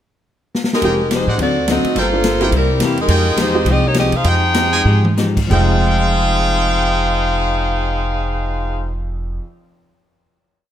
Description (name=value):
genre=jazz, big band swing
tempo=180-212 BPM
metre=4/4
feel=swing 59% on 8ths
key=F minor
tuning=A4 = 436 Hz
part: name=swinging big-band drum kit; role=drums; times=0.5-8.1 s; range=crash cymbal, cymbal swell, hi-hat, kick drum, ride cymbal, snare drum, toms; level=-22 LUFS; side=left 1 dB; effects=none
part: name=warm saxophone section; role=melody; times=0.7-8.9 s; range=E3 to G5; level=-18 LUFS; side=left 1 dB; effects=none
part: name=archtop guitar, miked and amplified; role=accompaniment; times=0.8-9.5 s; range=C3 to A4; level=-24 LUFS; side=left 5 dB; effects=none
part: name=clear upright piano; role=accompaniment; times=0.8-9.4 s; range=F2 to G5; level=-24 LUFS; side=right 3 dB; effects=none
part: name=brilliant trumpet section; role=stabs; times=0.8-9.0 s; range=Eb4 to Ab5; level=-23 LUFS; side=right 1 dB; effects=none
part: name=upright bass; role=bass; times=0.8-9.4 s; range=F1 to C3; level=-18 LUFS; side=equal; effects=none
room=light reverb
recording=close, detailed microphones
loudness=-14 LUFS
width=side -10 dB against mid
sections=0.0-0.8 pickup bar; 0.8-5.5 A section; 5.5-8.2 final chord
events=drum fill 0.5, 4.9-5.2; slowing down 3.1-5.5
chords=0.0 N.C.; 0.8 Fm9; 1.4 D7b9; 2.0 Gm9; 2.5 C7; 3.1 Fm9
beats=0.26 0.54 | 0.82 1.11 1.39 1.67 | 1.96 2.24 2.52 2.81 | 3.09 3.37 3.66 3.95 | 4.25 4.55 4.86 5.17 | 5.50 5.84 6.17 6.50 | 6.84 7.17 7.50 7.84